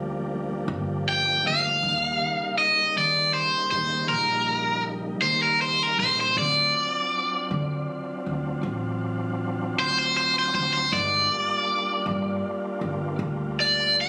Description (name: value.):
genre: slow blues.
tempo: 53 BPM (dotted quarters).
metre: 12/8.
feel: straight.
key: G minor.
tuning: A4 = 440 Hz.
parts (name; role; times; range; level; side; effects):
tonewheel organ; sustained chords; 0.0-14.1 s; Db3 to F#4; -35 LUFS; equal; slow rotary speaker, overdrive, chorus vibrato.
upright bass; bass; 0.0-14.1 s; G1 to Eb3; -33 LUFS; equal; none.
cranked stack guitar; melody; 1.1-14.1 s; Bb4 to G5; -24 LUFS; equal; overdrive.
room: light reverb.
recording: recorded on a phone in the room, studio reverb.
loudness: -24 LUFS.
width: mono.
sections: 0.0-14.1 A section.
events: overdriven electric guitar solo 0.0-14.1.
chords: 0.0 Gm7; 1.8 Eb7; 6.4 D7#9; 10.9 Gm7.